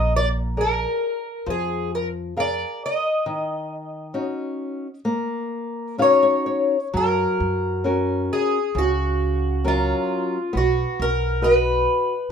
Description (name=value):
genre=fado-style ballad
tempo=67 BPM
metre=4/4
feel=rubato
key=Eb minor, F# major from 6.9 s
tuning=A4 = 440 Hz
part: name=fingerpicked twelve-string acoustic guitar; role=melody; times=0.0-12.3 s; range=E#4 to Eb5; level=-22 LUFS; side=left 1 dB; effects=none
part: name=flamenco guitar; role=accompaniment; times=0.0-12.1 s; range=C#3 to F5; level=-25 LUFS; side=left 1 dB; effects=none
part: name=upright bass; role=bass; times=0.0-11.9 s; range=Bb1 to F#2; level=-25 LUFS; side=right 1 dB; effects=none
room=moderate small room reverb, RT60 0.5 s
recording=minimal, uncompressed stereo recording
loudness=-20 LUFS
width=side -7 dB against mid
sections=0.0-6.9 A section; 6.9-12.3 B section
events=nylon-string guitar fill 5.5-6.9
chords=0.0 Bb7; 3.3 Ebm7; 6.9 F#; 10.6 B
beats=0.58 1.46 2.36 | 3.25 4.15 5.05 5.99 | 6.94 7.86 8.76 9.66 | 10.55 11.44 12.31